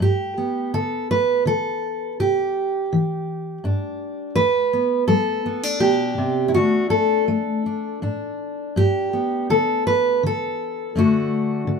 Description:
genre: folk, solo fingerstyle acoustic guitar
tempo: 82 BPM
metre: 3/4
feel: straight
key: G major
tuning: A4 = 438 Hz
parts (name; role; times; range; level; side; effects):
- fingerpicked steel-string acoustic guitar; solo; 0.0-11.8 s; E2 to B4; -19 LUFS; equal; none
room: light reverb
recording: minimal, uncompressed stereo recording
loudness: -19 LUFS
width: side -5 dB against mid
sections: 0.0-11.8 A section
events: none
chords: 0.0 G; 2.2 Cadd9; 4.4 Em7; 6.6 D5; 8.8 G; 11.0 D/F#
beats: | 0.01 0.74 1.47 | 2.20 2.92 3.65 | 4.37 5.10 5.83 | 6.56 7.29 8.02 | 8.76 9.49 10.23 | 10.96 11.69

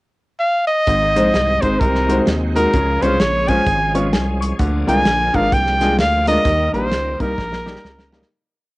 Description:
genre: uptempo gospel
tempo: 129 BPM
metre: 4/4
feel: swing 61% on 8ths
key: Ab major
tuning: A4 = 440 Hz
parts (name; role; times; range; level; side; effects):
- clear trumpet; melody; 0.4-8.1 s; Bb4 to Ab5; -17 LUFS; equal; none
- bright grand piano; accompaniment; 0.9-8.2 s; Ab2 to Db6; -20 LUFS; left 1 dB; cassette tape
- bright tonewheel organ; sustained chords; 0.9-8.3 s; Eb3 to Bb4; -28 LUFS; right 2 dB; slow rotary speaker, chorus vibrato, cassette tape
- rubbery square bass; bass; 0.9-8.2 s; Ab1 to Eb2; -21 LUFS; equal; none
- warm soul drum kit; drums; 0.9-8.3 s; hi-hat, kick drum, snare drum; -22 LUFS; equal; cassette tape
room: light reverb, small room ambience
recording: home recording on cassette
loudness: -14 LUFS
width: side -20 dB against mid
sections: 0.0-0.9 pickup bar; 0.9-8.3 verse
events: fade-out 6.5-8.3; drum fill 7.4-8.3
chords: 0.0 N.C.; 0.9 Ab; 1.8 Ab7/C; 2.7 Db; 4.6 Bb7; 6.5 Eb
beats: 0.40 | 0.87 1.34 1.81 2.27 | 2.74 3.20 3.67 4.13 | 4.60 5.06 5.53 5.99 | 6.45 6.92 7.38 7.84

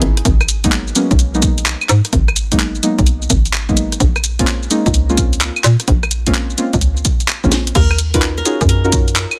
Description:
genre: UK garage, two-step garage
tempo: 128 BPM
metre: 4/4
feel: swing 66% on 16ths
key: unclear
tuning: A4 = 440 Hz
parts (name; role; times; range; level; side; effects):
- hollow knocking FM bass; bass; 0.0-9.3 s; Ab1 to Bb2; -19 LUFS; equal; none
- garage drum kit; drums; 0.0-9.4 s; claves, crash cymbal, handclaps, hi-hat, rim click, shaker, snare drum; -20 LUFS; equal; none
- electronic kick drum; drums; 0.3-9.0 s; none; -19 LUFS; equal; none
- deep mellow chord stab; stabs; 0.6-9.0 s; Gb3 to Bb4; -21 LUFS; equal; chorus, tape echo
- flamenco guitar; melody; 7.8-8.9 s; Bb4 to Cb5; -27 LUFS; equal; tape echo
room: little or no reverb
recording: none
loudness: -15 LUFS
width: mono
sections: 0.0-9.4 A section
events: drum fill 7.5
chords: 0.0 Abm7; 4.0 Bbm7; 7.8 Ebm7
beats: | 0.25 0.72 1.19 1.66 | 2.13 2.60 3.06 3.53 | 4.00 4.47 4.94 5.41 | 5.88 6.35 6.82 7.28 | 7.75 8.22 8.69 9.16

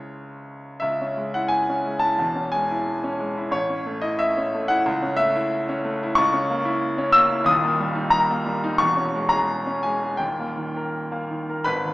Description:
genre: classical, romantic character piece for solo piano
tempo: 80-94 BPM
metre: 2/4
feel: rubato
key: C# minor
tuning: A4 = 440 Hz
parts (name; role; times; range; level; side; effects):
- clear concert grand piano; solo; 0.0-11.9 s; D#1 to E6; -20 LUFS; equal; none
room: wet concert hall reverb, RT60 2.1 s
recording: recorded in a church or concert hall, small speaker sound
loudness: -20 LUFS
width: side -19 dB against mid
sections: 0.8-11.7 A section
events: none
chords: 0.0 C#m; 2.2 C#m/E; 3.5 A; 4.9 A/C#; 6.2 A#dim/C#; 7.5 D#; 8.8 C#m/E; 10.2 D#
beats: 0.09 | 0.82 1.52 | 2.20 2.87 | 3.53 4.20 | 4.87 5.53 | 6.17 6.82 | 7.48 8.13 | 8.80 9.49 | 10.21 10.94 | 11.66

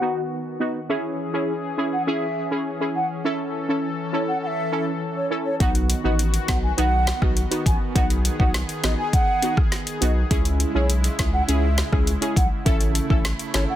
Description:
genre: dancehall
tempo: 102 BPM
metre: 4/4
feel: straight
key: unclear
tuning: A4 = 442 Hz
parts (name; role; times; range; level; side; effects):
- mellow hollow wooden flute; melody; 0.0-13.8 s; C#5 to G#5; -28 LUFS; right 1 dB; low-pass filter, tape echo
- synth brass stab; accompaniment; 0.0-13.7 s; B3 to A4; -26 LUFS; right 1 dB; chorus, low-pass filter
- warm analog pad; sustained chords; 0.0-13.8 s; C#3 to A4; -30 LUFS; left 1 dB; chorus, tremolo, sidechain pumping, low-pass filter
- saturated sub bass; bass; 5.6-13.7 s; G#1 to C#2; -22 LUFS; equal; none
- afro-pop drum kit; drums; 5.6-13.7 s; hi-hat, kick drum, rim click, snare drum; -22 LUFS; equal; none
room: little or no reverb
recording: dense, heavily limited modern master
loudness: -20 LUFS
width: side -12 dB against mid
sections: 0.0-5.6 A section; 5.6-13.8 B section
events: none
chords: 0.0 B; 0.9 C#m; 3.2 A; 5.6 B; 10.3 C#m; 12.7 A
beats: 0.31 | 0.90 1.49 2.07 2.66 | 3.25 3.84 4.43 5.01 | 5.60 6.19 6.78 7.37 | 7.96 8.54 9.13 9.72 | 10.31 10.90 11.48 12.07 | 12.66 13.25

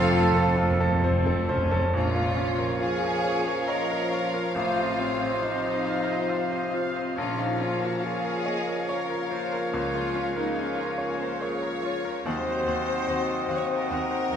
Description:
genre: classical, romantic movement for piano and orchestra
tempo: 70 BPM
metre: 3/4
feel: uneven beats, rubato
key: Bb minor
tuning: A4 = 442 Hz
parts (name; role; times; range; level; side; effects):
- bright grand piano; melody; 0.0-14.4 s; A1 to Db5; -30 LUFS; left 2 dB; none
- rich studio violin section; melody; 0.0-14.4 s; F5 to Gb5; -40 LUFS; left 3 dB; none
- clear clarinet; second line; 0.0-14.4 s; C4 to Gb5; -36 LUFS; equal; none
- rich studio violin section; second line; 0.0-14.4 s; Db4 to Db5; -32 LUFS; left 2 dB; none
- silver concert flute; second line; 0.0-14.4 s; A4 to Gb5; -37 LUFS; left 1 dB; none
- warm oboe; second line; 0.0-14.4 s; A4 to Eb5; -35 LUFS; right 2 dB; none
- dark bassoon; accompaniment; 0.0-14.4 s; F3 to C4; -34 LUFS; right 1 dB; none
- bright trombone section; sustained chords; 0.0-14.4 s; Bb2 to C4; -36 LUFS; right 3 dB; none
- mellow French horn section; sustained chords; 0.0-14.4 s; F3 to F4; -36 LUFS; left 5 dB; none
- mellow trumpet; stabs; 0.0-1.6 s; A4; -32 LUFS; right 4 dB; none
- clear studio cello section; bass; 0.0-14.4 s; Db2 to Bb2; -34 LUFS; right 2 dB; none
- rich studio double bass section; bass; 0.0-14.4 s; F1 to Eb2; -37 LUFS; right 4 dB; none
- timpani; percussion; 0.0-1.9 s; F2; -28 LUFS; equal; none
- rich studio viola section; accompaniment; 0.1-14.4 s; A3 to F5; -37 LUFS; right 2 dB; none
room: wet recital hall reverb, RT60 1.6 s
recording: none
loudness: -24 LUFS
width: side -8 dB against mid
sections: 0.0-1.9 A section; 1.9-14.4 B section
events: timpani fill 0.0-1.9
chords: 0.0 F; 1.9 Bbm; 4.5 F7/A; 7.2 Bbm; 9.7 Bbm/Db; 12.2 Cdim/Eb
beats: 0.10 1.04 | 1.95 2.81 3.67 | 4.54 5.42 6.29 | 7.17 8.03 8.88 | 9.73 10.57 11.41 | 12.25 13.08 13.91

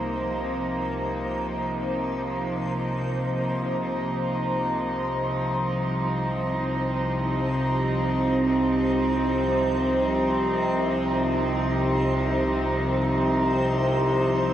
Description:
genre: dark ambient drone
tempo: free time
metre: none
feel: none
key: C minor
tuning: A4 = 440 Hz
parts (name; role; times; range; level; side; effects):
- clear studio cello section; sustained chords; 0.0-14.5 s; C3 to Eb4; -26 LUFS; right 1 dB; none
- analog drone; drone; 0.0-14.5 s; C2 to C3; -26 LUFS; equal; chorus
- backwards swelling texture; texture; 0.0-14.5 s; C5; -31 LUFS; equal; built-in reverb
room: wet huge ambient reverb, RT60 8.0 s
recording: worn, warbling old tape, cassette tape, warbly pitch drift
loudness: -22 LUFS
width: side -11 dB against mid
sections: 0.0-14.5 A section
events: none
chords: 0.0 Cm7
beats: free time

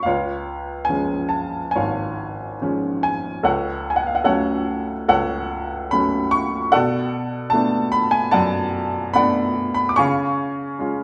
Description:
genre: classical, lyrical solo piano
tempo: 72 BPM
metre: 4/4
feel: rubato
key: unclear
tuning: A4 = 444 Hz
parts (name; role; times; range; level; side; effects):
- clear upright piano; solo; 0.0-11.0 s; G#1 to D6; -21 LUFS; equal; none
room: wet recital hall reverb, RT60 1.4 s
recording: recorded in a church or concert hall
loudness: -21 LUFS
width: mono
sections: 0.1-11.0 A section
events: none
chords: 0.1 C#; 3.4 F#m/C#; 6.7 Bm7; 10.0 C#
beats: | 0.06 0.91 1.76 2.61 | 3.44 4.26 5.09 5.93 | 6.74 7.54 8.34 9.16 | 9.99 10.82

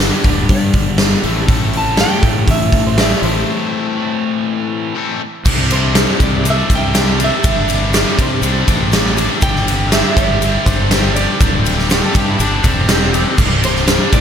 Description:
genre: classic rock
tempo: 121 BPM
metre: 4/4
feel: straight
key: C major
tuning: A4 = 441 Hz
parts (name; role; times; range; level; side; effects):
- flamenco guitar; melody; 0.0-14.2 s; C5 to A5; -22 LUFS; right 2 dB; slapback echo, digital delay
- overdriven electric guitar; riff; 0.0-14.2 s; C2 to A4; -20 LUFS; left 9 dB; slapback echo
- tight distorted guitar; riff; 0.0-14.2 s; C2 to G4; -23 LUFS; right 11 dB; distortion, slapback echo
- fuzz fingered electric bass; bass; 0.0-14.2 s; C1 to C3; -18 LUFS; equal; overdrive
- huge arena drum kit; drums; 0.2-14.2 s; crash cymbal, hi-hat, kick drum, ride cymbal, snare drum; -14 LUFS; equal; none
- egg shaker; percussion; 5.5-14.2 s; none; -33 LUFS; right 7 dB; none
- overdriven slide guitar; second line; 11.9-13.5 s; C4 to A4; -23 LUFS; left 2 dB; slapback echo
room: light reverb, small room ambience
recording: none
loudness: -12 LUFS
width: side -8 dB against mid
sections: 0.0-5.5 A section; 5.5-14.2 B section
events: break 3.5-5.5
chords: 0.0 G; 1.2 Am; 5.5 Csus2; 9.4 Gsus4; 13.4 Csus2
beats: 0.00 0.50 0.99 | 1.49 1.99 2.48 2.98 | 3.48 3.97 4.47 4.96 | 5.46 5.96 6.45 6.95 | 7.45 7.94 8.44 8.93 | 9.43 9.92 10.42 10.91 | 11.41 11.90 12.40 12.89 | 13.39 13.88

